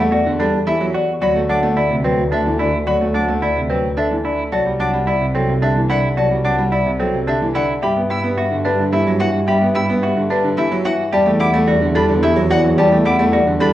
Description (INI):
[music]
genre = classical, minimalist pattern music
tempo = 109 BPM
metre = 3/4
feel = straight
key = C lydian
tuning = A4 = 440 Hz
[part]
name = marimba with medium hard mallets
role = melody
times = 0.0-13.7 s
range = G4 to G5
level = -20 LUFS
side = left 4 dB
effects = none
[part]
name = bright baby grand piano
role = accompaniment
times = 0.0-13.7 s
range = C3 to B3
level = -20 LUFS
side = right 2 dB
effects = none
[part]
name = semi-hollow electric guitar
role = arpeggios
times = 0.0-13.7 s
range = C4 to G4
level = -22 LUFS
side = right 2 dB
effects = none
[part]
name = warm studio double bass section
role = bass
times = 0.0-13.7 s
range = C2 to G2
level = -21 LUFS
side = right 1 dB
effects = none
[part]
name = rich violin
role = arpeggios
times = 0.7-13.7 s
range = E5 to E6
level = -26 LUFS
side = left 2 dB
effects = none
[sound]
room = wet large studio reverb, RT60 1.3 s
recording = worn, warbling old tape, cassette tape, warbly pitch drift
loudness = -14 LUFS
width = side -13 dB against mid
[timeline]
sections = 0.0-13.7 A section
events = none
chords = 0.0 Em9; 1.2 D9; 4.5 Cadd9; 7.8 Gmaj7; 11.1 Em9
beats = 0.12 0.67 | 1.22 1.77 2.32 | 2.87 3.42 3.97 | 4.52 5.07 5.62 | 6.17 6.73 7.28 | 7.83 8.38 8.93 | 9.48 10.03 10.58 | 11.13 11.68 12.23 | 12.78 13.33